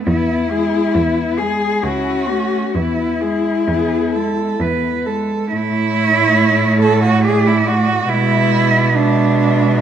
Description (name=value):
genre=classical, lyrical piece for cello ensemble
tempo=64-71 BPM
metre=3/4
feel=rubato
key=A major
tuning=A4 = 438 Hz
part: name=warm cello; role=second line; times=0.0-9.8 s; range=C#4 to B4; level=-18 LUFS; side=right 6 dB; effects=none
part: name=rich cello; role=accompaniment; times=0.0-9.8 s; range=G#3 to C#4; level=-20 LUFS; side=left 1 dB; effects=none
part: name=warm cello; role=melody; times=0.1-9.8 s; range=E4 to E5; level=-21 LUFS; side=left 5 dB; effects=none
part: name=rich cello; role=bass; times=0.1-9.8 s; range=C#2 to B2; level=-19 LUFS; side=right 2 dB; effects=none
room=moderate recital hall reverb, RT60 1.7 s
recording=none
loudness=-14 LUFS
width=side -9 dB against mid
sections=0.0-5.5 A section; 5.5-9.8 B section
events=none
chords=0.1 E; 1.8 A/C#; 2.8 E; 5.5 A; 8.1 E7/B